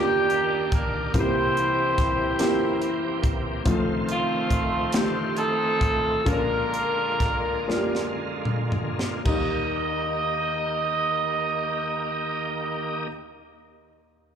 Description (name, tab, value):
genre	slow gospel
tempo	36-48 BPM (dotted quarters)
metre	6/8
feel	straight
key	Eb major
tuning	A4 = 441 Hz
part	clear saxophone section	melody	0.0-13.1 s	A3 to Eb5	-25 LUFS	right 1 dB	slapback echo
part	warm upright piano	accompaniment	0.0-14.4 s	F1 to G4	-28 LUFS	left 2 dB	slapback echo
part	bright tonewheel organ	sustained chords	0.0-13.1 s	D3 to G4	-30 LUFS	right 3 dB	slow rotary speaker, overdrive, chorus vibrato
part	crisp fusion drum kit	drums	0.3-9.5 s	crash cymbal, hi-hat, kick drum, snare drum, toms	-27 LUFS	equal	none
room	light reverb, small room ambience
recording	live gig heard through the venue's PA, club reverb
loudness	-22 LUFS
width	side -8 dB against mid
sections	0.0-9.3 A section; 9.3-12.6 B section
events	slowing down 3.7-9.3; drum fill 7.7-9.3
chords	0.0 Ebmaj7; 1.1 C7; 3.7 F7; 6.3 Bb7; 9.3 Eb